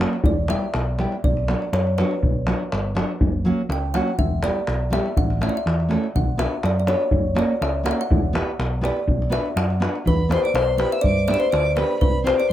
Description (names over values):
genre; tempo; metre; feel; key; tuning
balkan folk, Balkan wedding band; 123 BPM; 2/4; swing 53% on 16ths; B minor; A4 = 440 Hz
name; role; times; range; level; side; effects
nylon-string guitar; accompaniment; 0.0-12.4 s; F#3 to C5; -24 LUFS; right 1 dB; none
hollow-body short-scale fingered electric bass; bass; 0.0-12.5 s; E1 to G2; -23 LUFS; equal; none
davul; percussion; 0.0-12.5 s; none; -24 LUFS; equal; none
kalimba; melody; 0.3-12.5 s; B4 to G5; -24 LUFS; left 1 dB; none
rich violin; second line; 10.1-12.5 s; B5 to E6; -30 LUFS; right 2 dB; none
room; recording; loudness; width
light reverb; none; -19 LUFS; side -12 dB against mid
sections
0.0-10.1 A section; 10.1-12.5 B section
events
kalimba solo 0.0-10.1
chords
0.2 Em; 1.2 Bm; 3.2 F#; 4.2 Em; 5.2 A; 6.1 Bm; 7.1 F#; 8.1 Em; 9.1 Bm; 10.1 Em; 11.0 G; 12.0 C